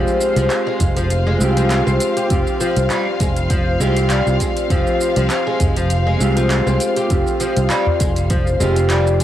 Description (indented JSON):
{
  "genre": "organic downtempo",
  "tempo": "100 BPM",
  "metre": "4/4",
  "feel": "swing 54% on 16ths",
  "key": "F minor",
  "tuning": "A4 = 440 Hz",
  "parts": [
    { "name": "mellow electric guitar", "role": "accompaniment", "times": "0.0-9.2 s", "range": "Ab3 to G4", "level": "-21 LUFS", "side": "right 2 dB", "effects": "sidechain pumping, cassette tape, tape echo" },
    { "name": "dark studio string section", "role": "sustained chords", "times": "0.0-9.2 s", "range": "F4 to F5", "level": "-25 LUFS", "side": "left 2 dB", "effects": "sidechain pumping, cassette tape" },
    { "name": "oud", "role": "arpeggios", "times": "0.0-9.2 s", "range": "F3 to G4", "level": "-21 LUFS", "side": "left 3 dB", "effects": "vintage 12-bit sampler grit, cassette tape, tape echo" },
    { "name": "fretless electric bass", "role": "bass", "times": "0.0-9.2 s", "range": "F1 to C2", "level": "-18 LUFS", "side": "equal", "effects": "sidechain pumping" },
    { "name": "deep house drum kit", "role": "drums", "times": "0.1-9.2 s", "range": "handclaps, hi-hat, shaker", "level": "-26 LUFS", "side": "right 1 dB", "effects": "overdrive, cassette tape" },
    { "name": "electronic kick drum", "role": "drums", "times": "0.8-9.2 s", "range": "none", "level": "-21 LUFS", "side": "equal", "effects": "overdrive, cassette tape" },
    { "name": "udu", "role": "percussion", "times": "0.8-8.1 s", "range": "none", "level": "-22 LUFS", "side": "right 1 dB", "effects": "none" }
  ],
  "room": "light reverb, studio reverb",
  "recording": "home recording on cassette",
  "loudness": "-15 LUFS",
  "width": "side -12 dB against mid",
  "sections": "0.0-9.2 A section",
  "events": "none",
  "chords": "0.0 Fmadd9"
}